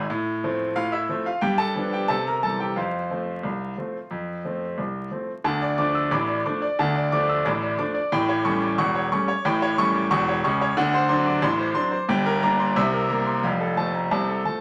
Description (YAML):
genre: ragtime piano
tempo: 90 BPM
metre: 2/4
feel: straight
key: unclear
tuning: A4 = 441 Hz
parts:
  - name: clear grand piano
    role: solo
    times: 0.0-14.6 s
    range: E1 to E6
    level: -24 LUFS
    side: equal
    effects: none
room: wet studio reverb, RT60 0.7 s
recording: vinyl crackle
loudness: -24 LUFS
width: mono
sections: 0.0-5.5 A section; 5.5-14.6 B section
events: none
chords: 0.1 F/A; 1.4 G7; 2.1 C7; 2.8 F; 5.5 Dm; 8.1 A7; 10.8 D7; 12.1 Gm; 12.8 C7; 13.4 F